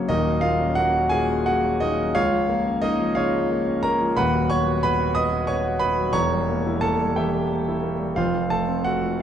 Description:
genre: classical, romantic character piece for solo piano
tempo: 59 BPM (dotted quarters)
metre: 6/8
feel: rubato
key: unclear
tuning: A4 = 441 Hz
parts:
  - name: clear concert grand piano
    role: solo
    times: 0.0-9.2 s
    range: Eb1 to D#6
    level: -20 LUFS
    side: equal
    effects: none
room: moderate recital hall reverb, RT60 1.5 s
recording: dark, warm production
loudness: -20 LUFS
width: side -9 dB against mid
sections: 0.0-9.2 A section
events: none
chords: 0.1 Ebm7; 2.1 Bbm/Db; 4.2 B/D#; 6.1 Edim7; 8.2 F

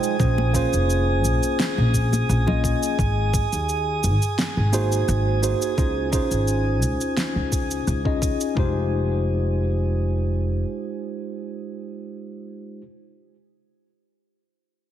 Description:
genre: sunset chillout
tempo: 86 BPM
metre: 4/4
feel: straight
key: F minor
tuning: A4 = 439 Hz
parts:
  - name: tine electric piano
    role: accompaniment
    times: 0.0-12.8 s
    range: Ab3 to G5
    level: -26 LUFS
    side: moving between left 8 dB and right 7 dB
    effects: auto-pan, digital delay
  - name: electronic cabasa and snare drum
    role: drums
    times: 0.0-8.5 s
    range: none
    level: -28 LUFS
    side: equal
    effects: none
  - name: drifting glass-harmonics texture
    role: texture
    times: 0.0-8.6 s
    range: Ab4 to Ab5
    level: -29 LUFS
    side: right 1 dB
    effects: chorus, built-in reverb
  - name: upright bass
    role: bass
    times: 0.2-10.6 s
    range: F1 to Eb2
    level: -22 LUFS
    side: equal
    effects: none
  - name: electronic kick drum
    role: drums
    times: 0.2-8.7 s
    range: none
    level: -24 LUFS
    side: equal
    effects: none
  - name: congas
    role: percussion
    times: 0.4-2.6 s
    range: none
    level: -30 LUFS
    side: left 2 dB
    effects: none
room: light reverb, small room reverb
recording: heavily compressed radio sound, multiband compression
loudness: -20 LUFS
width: side -10 dB against mid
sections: 0.0-8.6 A section; 8.6-11.4 B section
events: none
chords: 0.2 Bbm7; 3.0 Ab7; 5.8 Dbmaj7; 8.6 Fm7

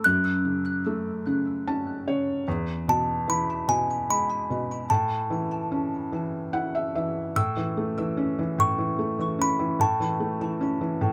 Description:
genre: children's music, lullaby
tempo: 49 BPM (dotted quarters)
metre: 6/8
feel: straight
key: A major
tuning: A4 = 441 Hz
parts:
  - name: music box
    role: melody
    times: 0.0-11.1 s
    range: G#5 to F#6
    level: -28 LUFS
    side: equal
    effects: tape echo
  - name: felt-muted upright piano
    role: accompaniment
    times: 0.0-11.1 s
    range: E2 to A5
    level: -29 LUFS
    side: equal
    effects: none
room: light reverb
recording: none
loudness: -26 LUFS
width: mono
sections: 0.0-7.4 A section; 7.4-11.1 B section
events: felt piano fill 1.3-2.5, 6.1-7.4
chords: 0.0 F#m; 2.5 E; 4.9 A

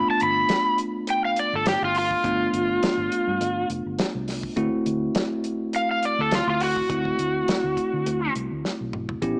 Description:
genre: straight-eighth soul blues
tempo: 103 BPM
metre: 4/4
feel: swing 54% on 16ths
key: unclear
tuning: A4 = 440 Hz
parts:
  - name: overdriven slide guitar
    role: melody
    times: 0.0-8.3 s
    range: F4 to B5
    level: -25 LUFS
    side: equal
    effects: slapback echo
  - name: bell-like tine electric piano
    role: accompaniment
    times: 0.0-9.4 s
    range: A3 to G4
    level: -30 LUFS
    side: equal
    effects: none
  - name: vintage muted fingered electric bass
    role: bass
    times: 0.0-9.3 s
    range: F1 to D3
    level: -35 LUFS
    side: equal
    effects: none
  - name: warm soul drum kit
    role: drums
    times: 0.2-9.4 s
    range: hi-hat, kick drum, snare drum, toms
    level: -31 LUFS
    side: equal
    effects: none
room: light reverb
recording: small speaker sound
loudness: -24 LUFS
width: mono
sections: 0.0-9.4 A section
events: drum fill 8.6-9.2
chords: 0.0 G9; 4.6 D9

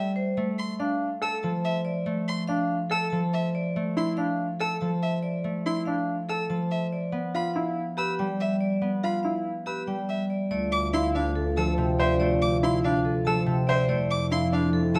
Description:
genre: classical, minimalist pattern music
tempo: 142 BPM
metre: 4/4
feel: straight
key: unclear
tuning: A4 = 435 Hz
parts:
  - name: concert harp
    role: accompaniment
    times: 0.0-15.0 s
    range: C3 to B3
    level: -31 LUFS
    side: equal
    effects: none
  - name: warm violin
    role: arpeggios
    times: 0.0-15.0 s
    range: E5 to E6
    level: -35 LUFS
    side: equal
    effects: none
  - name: vibraphone with hard mallets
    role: melody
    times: 0.2-15.0 s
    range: G4 to A5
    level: -35 LUFS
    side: equal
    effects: none
  - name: clear baby grand piano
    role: arpeggios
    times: 0.8-15.0 s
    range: D4 to C5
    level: -31 LUFS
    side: equal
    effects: none
  - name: mellow French horn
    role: second line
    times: 10.5-15.0 s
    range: E4 to F4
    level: -32 LUFS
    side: equal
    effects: none
  - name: warm studio double bass section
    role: bass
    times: 10.5-15.0 s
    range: D2 to F2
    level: -32 LUFS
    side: equal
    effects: none
room: moderate recital hall reverb, RT60 1.3 s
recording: close, detailed microphones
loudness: -27 LUFS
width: mono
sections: 0.0-10.5 A section; 10.5-15.0 B section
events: none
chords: 0.4 Fmaj7; 7.1 G7; 10.5 Dm7; 13.9 Fmaj7

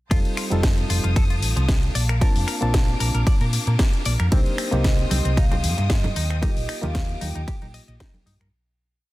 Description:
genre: nu-disco, nu disco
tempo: 114 BPM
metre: 4/4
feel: swing 54% on 16ths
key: F mixolydian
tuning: A4 = 440 Hz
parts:
  - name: reed electric piano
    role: accompaniment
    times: 0.1-8.5 s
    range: G3 to A5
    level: -30 LUFS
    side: equal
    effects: sidechain pumping, slapback echo
  - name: rich studio string section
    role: sustained chords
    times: 0.1-8.5 s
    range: Bb3 to Eb6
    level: -35 LUFS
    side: left 3 dB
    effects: sidechain pumping
  - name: direct-recorded clean electric guitar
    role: riff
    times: 0.1-8.5 s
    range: C3 to Eb5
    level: -34 LUFS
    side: left 3 dB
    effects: wide subtle chorus, slapback echo
  - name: hollow-body short-scale fingered electric bass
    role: bass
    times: 0.1-8.5 s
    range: F1 to Bb2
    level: -23 LUFS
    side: equal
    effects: none
  - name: electronic kick drum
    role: drums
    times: 0.1-8.1 s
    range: none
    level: -20 LUFS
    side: equal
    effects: none
  - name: house drum kit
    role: drums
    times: 0.1-8.5 s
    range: finger snaps, hi-hat, ride cymbal, snare drum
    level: -29 LUFS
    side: left 1 dB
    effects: none
  - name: vibraphone with soft mallets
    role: melody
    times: 4.3-7.7 s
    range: C5 to G5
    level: -33 LUFS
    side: right 2 dB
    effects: tape echo
  - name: congas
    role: percussion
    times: 4.3-8.2 s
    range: none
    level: -32 LUFS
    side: right 2 dB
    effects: none
room: little or no reverb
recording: dense, heavily limited modern master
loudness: -19 LUFS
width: side -18 dB against mid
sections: 0.1-8.5 drop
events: drop 0.1-8.5; fade-out 5.7-8.5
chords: 0.1 F7; 2.0 Bbmaj7; 4.3 Cm7; 6.4 Ebmaj7

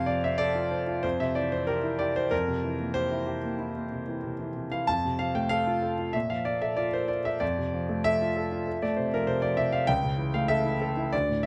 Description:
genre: classical, romantic character piece for solo piano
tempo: 94 BPM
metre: 4/4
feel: rubato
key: F major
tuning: A4 = 437 Hz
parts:
  - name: clear grand piano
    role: solo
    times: 0.0-11.5 s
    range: C#2 to A5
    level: -28 LUFS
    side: equal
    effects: none
room: light reverb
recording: close, detailed microphones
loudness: -28 LUFS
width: mono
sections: 0.0-11.5 A section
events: none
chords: 0.0 F; 1.0 C/F; 2.3 C7/F; 4.9 F; 6.1 Bb5; 7.4 F; 9.9 A/C#

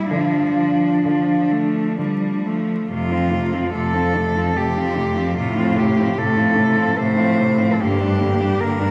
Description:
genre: classical, lyrical piece for cello ensemble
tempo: 63-75 BPM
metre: 3/4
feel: rubato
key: F major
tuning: A4 = 440 Hz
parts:
  - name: rich cello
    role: melody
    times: 0.0-8.9 s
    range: D4 to C5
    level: -23 LUFS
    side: equal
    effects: none
  - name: rich cello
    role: second line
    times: 0.0-8.9 s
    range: F3 to D4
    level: -28 LUFS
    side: equal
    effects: none
  - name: rich cello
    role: accompaniment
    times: 0.0-8.9 s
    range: C3 to A3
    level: -26 LUFS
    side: equal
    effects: none
  - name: rich cello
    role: bass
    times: 0.1-8.9 s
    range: F2 to D3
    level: -24 LUFS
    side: equal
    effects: none
room: wet church reverb, RT60 2.8 s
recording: recorded in a church or concert hall, vinyl crackle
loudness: -19 LUFS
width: mono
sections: 0.0-2.9 A section; 2.9-8.9 B section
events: none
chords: 0.1 Dm; 2.9 F; 5.4 F/A; 7.8 Gm

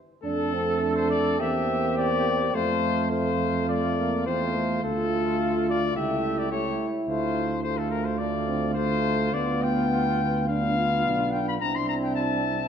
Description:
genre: classical, brass quintet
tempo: 106 BPM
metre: 4/4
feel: rubato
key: F major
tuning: A4 = 437 Hz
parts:
  - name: mellow trumpet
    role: melody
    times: 0.2-12.7 s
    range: A4 to C6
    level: -28 LUFS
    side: left 6 dB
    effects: none
  - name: mellow flugelhorn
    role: second line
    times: 0.2-12.7 s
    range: E4 to A4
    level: -32 LUFS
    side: right 5 dB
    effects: none
  - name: warm French horn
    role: accompaniment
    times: 0.2-12.7 s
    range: A3 to C4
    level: -32 LUFS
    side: left 2 dB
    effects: none
  - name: warm euphonium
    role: accompaniment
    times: 0.2-12.7 s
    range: A3 to F4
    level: -30 LUFS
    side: right 2 dB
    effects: none
  - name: dark tuba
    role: bass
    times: 0.2-12.7 s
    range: B1 to F2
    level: -29 LUFS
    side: right 3 dB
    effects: none
room: wet recital hall reverb, RT60 1.6 s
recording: none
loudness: -23 LUFS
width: side -8 dB against mid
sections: 0.2-12.7 A section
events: none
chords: 0.2 F; 1.4 C7/E; 2.5 F; 4.8 Dm; 6.0 A7/C#; 7.1 Dm7; 9.3 G7/D; 11.6 C

